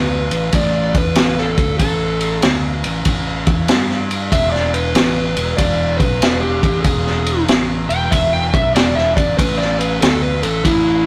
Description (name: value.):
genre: blues rock power trio and southern rock.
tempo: 95 BPM.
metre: 4/4.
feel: swing 66% on 8ths.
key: unclear.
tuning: A4 = 440 Hz.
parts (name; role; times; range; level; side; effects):
overdriven slide guitar; melody; 0.0-11.1 s; E4 to G5; -22 LUFS; equal; none.
fuzz fingered electric bass; bass; 0.0-11.0 s; E1 to G2; -23 LUFS; equal; overdrive.
vintage drum kit; drums; 0.3-10.8 s; kick drum, ride cymbal, snare drum; -19 LUFS; equal; none.
room: light reverb.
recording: rough rehearsal-room recording, warm saturation.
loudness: -16 LUFS.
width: mono.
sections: 0.0-11.1 A section.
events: electric slide guitar solo 0.0-11.1.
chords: 0.0 A5; 3.7 N.C.; 4.3 E5; 9.4 A5.